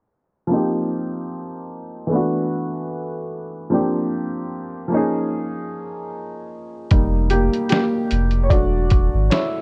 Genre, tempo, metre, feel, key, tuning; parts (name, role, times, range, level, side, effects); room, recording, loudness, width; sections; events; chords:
lo-fi hip hop; 75 BPM; 4/4; swing 55% on 16ths; A4 = 438 Hz
warm upright piano; accompaniment; 0.5-9.6 s; E3 to D5; -24 LUFS; equal; low-pass filter
warm sub bass; bass; 6.9-9.3 s; E1 to Ab1; -22 LUFS; equal
lo-fi sampler-style drum kit; drums; 6.9-9.5 s; hi-hat, kick drum, snare drum; -21 LUFS; equal
light reverb; low-pass filter; -21 LUFS; mono
0.5-6.9 A section; 6.9-9.6 B section
filter sweep 0.5-6.9; upright piano solo 6.9-9.6
0.5 F9sus4; 2.1 E9sus4; 3.7 C9sus4; 4.9 Eb9sus4; 6.9 F9sus4; 8.5 E9sus4